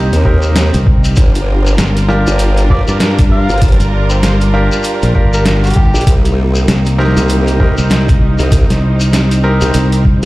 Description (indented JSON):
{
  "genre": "glitch hop",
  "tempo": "98 BPM",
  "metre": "4/4",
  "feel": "swing 60% on 16ths",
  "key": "G minor",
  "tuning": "A4 = 440 Hz",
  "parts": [
    { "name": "clear symphonic string section", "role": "sustained chords", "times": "0.0-10.3 s", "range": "C3 to Bb4", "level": "-21 LUFS", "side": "right 1 dB", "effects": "sidechain pumping" },
    { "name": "clear concert grand piano", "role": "stabs", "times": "0.0-10.0 s", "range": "C4 to Bb4", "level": "-20 LUFS", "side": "equal", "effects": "sidechain pumping, dub echo" },
    { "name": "modern bright fingered electric bass", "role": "bass", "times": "0.0-10.2 s", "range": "G1 to G2", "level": "-12 LUFS", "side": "equal", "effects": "none" },
    { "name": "airy breathy pad", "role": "texture", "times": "0.0-10.3 s", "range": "C4 to Bb5", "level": "-25 LUFS", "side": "equal", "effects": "chorus, sidechain pumping" },
    { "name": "formant-sweep wobble bass", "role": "bass", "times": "0.1-10.3 s", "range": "G1 to Eb2", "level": "-12 LUFS", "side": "equal", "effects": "chorus, tube saturation" },
    { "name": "boom bap sampler-style drum kit", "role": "drums", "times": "0.1-10.3 s", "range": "hi-hat, snare drum", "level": "-18 LUFS", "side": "equal", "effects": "none" },
    { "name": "shekere", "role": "percussion", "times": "0.1-10.3 s", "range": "none", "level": "-25 LUFS", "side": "left 3 dB", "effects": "none" },
    { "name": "electronic kick drum", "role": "drums", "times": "0.3-10.2 s", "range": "none", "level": "-11 LUFS", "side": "equal", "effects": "none" },
    { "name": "overdriven harmonica", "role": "melody", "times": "2.7-6.1 s", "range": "G4 to F5", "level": "-23 LUFS", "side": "equal", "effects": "dub echo" }
  ],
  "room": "small room ambience",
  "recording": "played on a big sound system in a bare room, stone room reverb",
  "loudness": "-9 LUFS",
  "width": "side -18 dB against mid",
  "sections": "0.0-10.3 A section",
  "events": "none",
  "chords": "0.0 Cm7; 1.2 Gm7; 6.1 Cm7"
}